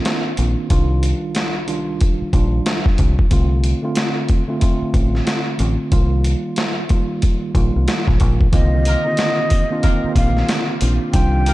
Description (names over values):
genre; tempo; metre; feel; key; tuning
hip hop, boom-bap hip-hop; 92 BPM; 4/4; swing 62% on 16ths; C dorian; A4 = 440 Hz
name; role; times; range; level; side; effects
mellow tine electric piano; accompaniment; 0.0-11.5 s; C2 to F4; -22 LUFS; right 2 dB; medium stereo tremolo, cassette tape, high-pass filter, low-pass filter
boom bap sampler-style drum kit; drums; 0.1-11.5 s; hi-hat, kick drum, snare drum; -18 LUFS; equal; none
deep dub fingered electric bass; bass; 0.4-11.5 s; A1 to C2; -17 LUFS; equal; none
breathy mellow silver concert flute; melody; 8.5-11.5 s; Eb5 to G5; -22 LUFS; left 1 dB; high-pass filter, low-pass filter
bright tonewheel organ; sustained chords; 8.5-11.5 s; C3 to G4; -33 LUFS; equal; chorus vibrato, slow rotary speaker, high-pass filter, low-pass filter
sleigh bells; percussion; 8.5-11.5 s; none; -38 LUFS; left 5 dB; none
warm horn section; stabs; 8.9-11.5 s; F4 to Bb4; -31 LUFS; left 2 dB; high-pass filter, low-pass filter, ping-pong delay
room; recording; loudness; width
little or no reverb; dark, warm production; -15 LUFS; side -17 dB against mid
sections
0.0-8.5 A section; 8.5-11.5 B section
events
none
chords
0.0 Cm11; 0.7 Ebmaj9/C; 3.3 Dm7/C; 5.9 F9sus4/C; 8.5 Cm11